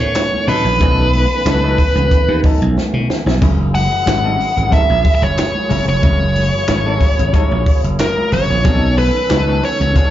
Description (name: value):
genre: funk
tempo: 92 BPM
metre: 4/4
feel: straight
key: unclear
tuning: A4 = 443 Hz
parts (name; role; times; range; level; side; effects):
- nasal lead guitar with a parked wah; melody; 0.0-10.1 s; Bb4 to Gb5; -17 LUFS; equal; overdrive, plate reverb, slapback echo
- tonewheel organ; sustained chords; 0.0-10.1 s; Eb3 to A4; -26 LUFS; right 1 dB; fast rotary speaker, overdrive, plate reverb
- slap bass; bass; 0.0-10.0 s; F1 to Cb3; -16 LUFS; equal; none
- compact cocktail drum kit; drums; 0.0-10.1 s; handclaps, hi-hat, kick drum, snare drum, splash cymbal; -17 LUFS; equal; none
- congas; percussion; 0.2-10.1 s; none; -25 LUFS; right 3 dB; slapback echo
- hollow-body jazz guitar; accompaniment; 0.5-10.1 s; Gb3 to Bb4; -24 LUFS; left 5 dB; plate reverb, slapback echo
room: light reverb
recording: live gig heard through the venue's PA, club reverb, nothing above 7.5 kHz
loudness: -12 LUFS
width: side -12 dB against mid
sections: 0.0-10.1 A section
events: drum fill 2.8-3.4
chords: 0.0 Cb9; 3.4 Gb9; 8.7 Cb9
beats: 0.15 | 0.80 1.46 2.11 2.76 | 3.42 4.07 4.72 5.38 | 6.03 6.69 7.34 8.00 | 8.65 9.30 9.96